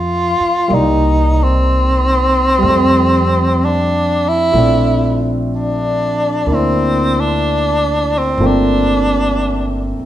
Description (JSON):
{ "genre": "jazz ballad", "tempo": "62 BPM", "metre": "4/4", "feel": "swing 69% on 8ths", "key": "unclear", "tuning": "A4 = 440 Hz", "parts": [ { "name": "warm tenor saxophone", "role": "melody", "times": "0.0-10.0 s", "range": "C4 to F4", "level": "-15 LUFS", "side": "equal", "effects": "none" }, { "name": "warm grand piano", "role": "accompaniment", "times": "0.0-10.1 s", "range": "F3 to E5", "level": "-18 LUFS", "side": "equal", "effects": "none" }, { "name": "upright bass", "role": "bass", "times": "0.0-10.0 s", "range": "G1 to F2", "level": "-18 LUFS", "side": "equal", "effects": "none" } ], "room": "moderate recital hall reverb, RT60 1.3 s", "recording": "recorded in a church or concert hall", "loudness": "-12 LUFS", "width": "side -12 dB against mid", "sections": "0.0-10.1 A section", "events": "none", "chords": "0.0 Dm9 (rootless); 0.7 Cm9; 2.6 Fadd9; 4.5 Bbmaj9; 8.4 Gm11" }